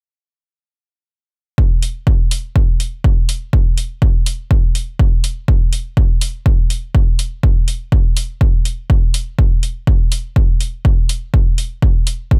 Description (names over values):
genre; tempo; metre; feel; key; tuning
piano house; 123 BPM; 4/4; swing 54% on 16ths; none; none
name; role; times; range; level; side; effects
electronic kick drum; drums; 1.6-12.4 s; none; -15 LUFS; equal; none
electronic hi-hat; drums; 1.8-12.2 s; none; -25 LUFS; equal; none
room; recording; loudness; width
little or no reverb; none; -16 LUFS; mono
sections
1.6-12.4 A section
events
none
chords
none